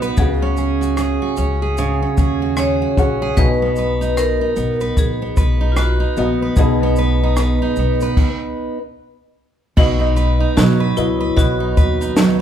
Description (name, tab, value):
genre	acoustic pop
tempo	75 BPM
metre	4/4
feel	swing 60% on 16ths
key	B major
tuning	A4 = 440 Hz
part	vibraphone with hard mallets	second line	0.0-12.4 s	D#4 to C#5	-24 LUFS	left 2 dB	none
part	felt-muted upright piano	accompaniment	0.0-12.4 s	B3 to F#5	-26 LUFS	left 4 dB	none
part	picked steel-string acoustic guitar	accompaniment	0.0-12.4 s	B2 to B4	-19 LUFS	right 4 dB	none
part	upright bass	bass	0.0-12.4 s	A#1 to B2	-20 LUFS	left 1 dB	none
part	compact cocktail drum kit	drums	0.0-12.4 s	crash cymbal, kick drum, rim click, shaker, snare drum	-17 LUFS	equal	none
room	light reverb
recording	band playing live in one room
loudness	-14 LUFS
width	side -9 dB against mid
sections	0.0-9.8 A section; 9.8-12.4 B section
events	stop 8.2-9.8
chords	0.2 F#sus2/C#; 6.6 G#m/B; 9.8 B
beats	| 0.18 0.98 1.78 2.58 | 3.38 4.18 4.98 5.78 | 6.58 7.38 8.17 8.97 | 9.77 10.57 11.37 12.17